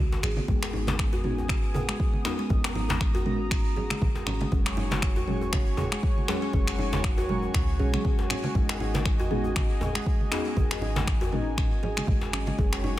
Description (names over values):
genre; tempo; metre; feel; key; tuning
afro house; 119 BPM; 4/4; swing 56% on 16ths; G# minor; A4 = 439 Hz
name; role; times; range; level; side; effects
kalimba; arpeggios; 0.0-13.0 s; D#3 to G#4; -34 LUFS; left 1 dB; sidechain pumping, tape echo
deep mellow chord stab; stabs; 0.0-13.0 s; F#3 to A#4; -34 LUFS; left 1 dB; chorus, phaser, vintage 12-bit sampler grit, sidechain pumping, tape echo
warm 808-style bass; bass; 0.0-13.0 s; F#1 to C#2; -32 LUFS; equal; sidechain pumping
djembe; percussion; 0.1-12.8 s; none; -35 LUFS; left 2 dB; none
deep house drum kit; drums; 0.2-12.8 s; finger snaps, toms; -33 LUFS; equal; overdrive
congas; percussion; 0.2-13.0 s; none; -34 LUFS; right 3 dB; none
warm analog pad; sustained chords; 0.5-13.0 s; B3 to D#6; -36 LUFS; right 1 dB; chorus, sidechain pumping
electronic kick drum; drums; 0.5-12.7 s; none; -26 LUFS; equal; none
room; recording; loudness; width
digital ambience; none; -24 LUFS; side -14 dB against mid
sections
0.0-13.0 A section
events
filter sweep on synth stab 0.0-13.0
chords
0.5 G#m7; 4.5 F#sus2; 8.6 G#m7